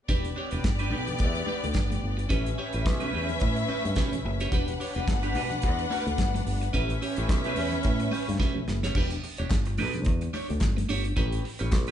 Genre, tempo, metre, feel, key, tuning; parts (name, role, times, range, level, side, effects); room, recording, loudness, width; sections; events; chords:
disco; 108 BPM; 4/4; swing 56% on 16ths; E dorian; A4 = 440 Hz
clear studio string section; second line; 0.1-8.9 s; B3 to F#5; -32 LUFS; left 1 dB
electric guitar at the edge of break-up; accompaniment; 0.1-11.9 s; C#4 to C#5; -33 LUFS; right 4 dB; phaser
fingered electric bass; bass; 0.1-11.9 s; E1 to A2; -30 LUFS; equal
damped 70s drum kit; drums; 0.1-11.9 s; crash cymbal, hi-hat, kick drum, snare drum; -29 LUFS; equal
congas; percussion; 0.1-11.9 s; -39 LUFS; left 4 dB
group handclap; percussion; 9.5-11.9 s; -45 LUFS; left 3 dB
moderate large studio reverb, RT60 1.1 s; band playing live in one room, nothing above 10.6 kHz; -25 LUFS; side -10 dB against mid
0.1-9.0 A section; 9.0-11.9 B section
drum fill 8.4-9.0
0.1 Em7; 2.3 A9; 4.5 Em7; 6.7 A9; 9.0 Em7; 11.2 A9